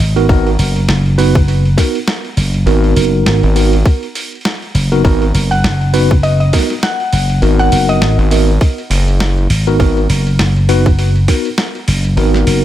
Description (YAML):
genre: glitch hop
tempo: 101 BPM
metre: 4/4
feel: swing 58% on 16ths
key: G# minor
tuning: A4 = 442 Hz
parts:
  - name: slap bass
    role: bass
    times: 0.0-12.6 s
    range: F#1 to G#1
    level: -12 LUFS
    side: equal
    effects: none
  - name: tine electric piano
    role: stabs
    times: 0.2-12.6 s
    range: B3 to B4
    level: -16 LUFS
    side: right 1 dB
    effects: medium stereo tremolo, sidechain pumping, analog delay
  - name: boom bap sampler-style drum kit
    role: drums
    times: 0.2-12.6 s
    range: hi-hat, snare drum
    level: -20 LUFS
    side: equal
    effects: overdrive
  - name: gritty driven synth bass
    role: bass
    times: 0.3-12.4 s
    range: F#1 to G#1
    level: -12 LUFS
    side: equal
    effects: none
  - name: electronic kick drum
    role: drums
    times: 0.3-11.4 s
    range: none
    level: -11 LUFS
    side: equal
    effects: none
  - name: woody wave-folded pluck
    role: melody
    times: 5.5-8.1 s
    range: D#5 to F#5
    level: -19 LUFS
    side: left 4 dB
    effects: chorus, cassette tape, analog delay
room: light reverb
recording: echo-heavy mix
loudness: -10 LUFS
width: side -12 dB against mid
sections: 0.0-12.6 A section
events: none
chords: 0.0 G#m9